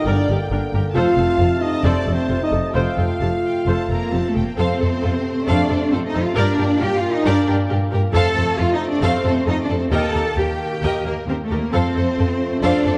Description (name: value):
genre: cinematic, heroic adventure film score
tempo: 134 BPM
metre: 4/4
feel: straight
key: F mixolydian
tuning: A4 = 440 Hz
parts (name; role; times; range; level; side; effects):
- rich symphonic violin section; melody; 0.0-13.0 s; A4 to Bb5; -34 LUFS; equal; none
- clear clarinet; second line; 0.0-4.3 s; C5 to F5; -30 LUFS; equal; none
- rich symphonic violin section; second line; 0.0-12.9 s; D4 to G5; -30 LUFS; equal; none
- clear trombone section; sustained chords; 0.0-13.0 s; Bb2 to Bb3; -30 LUFS; equal; none
- mellow French horn section; sustained chords; 0.0-4.3 s; C4 to F4; -24 LUFS; equal; none
- warm symphonic viola section; accompaniment; 0.1-12.9 s; D4 to C5; -30 LUFS; equal; none
- rich symphonic double bass section; bass; 0.1-12.9 s; F1 to G2; -24 LUFS; equal; none
- warm symphonic cello section; bass; 0.1-13.0 s; F2 to A4; -24 LUFS; equal; none
room: wet scoring stage reverb, RT60 2.0 s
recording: dark, warm production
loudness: -19 LUFS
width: mono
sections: 0.0-4.6 A section; 4.6-13.0 A section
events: none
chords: 0.0 Gm; 1.0 F; 2.7 Fadd9; 4.6 F; 6.4 Gm; 8.1 F; 9.9 Eb; 11.7 F